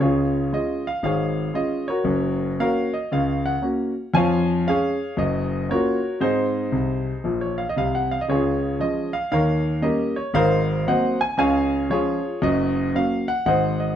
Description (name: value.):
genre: jazz, stride piano.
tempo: 116 BPM.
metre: 4/4.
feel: swing 64% on 8ths.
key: Db major.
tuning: A4 = 440 Hz.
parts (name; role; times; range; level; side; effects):
clear grand piano; solo; 0.0-14.0 s; Gb1 to Ab5; -20 LUFS; equal; none.
room: wet studio reverb, RT60 0.8 s.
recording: heard from further back in the room.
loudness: -20 LUFS.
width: side -10 dB against mid.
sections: 0.0-14.0 A section.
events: grand piano fill 6.7-8.3.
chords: 0.0 Db; 2.1 Gb; 4.1 Db/F; 5.2 Gbmaj7; 6.2 Ab; 8.3 Db; 9.3 Eb7; 10.3 Ab9; 11.4 Db; 12.4 Gb; 13.5 Ab7.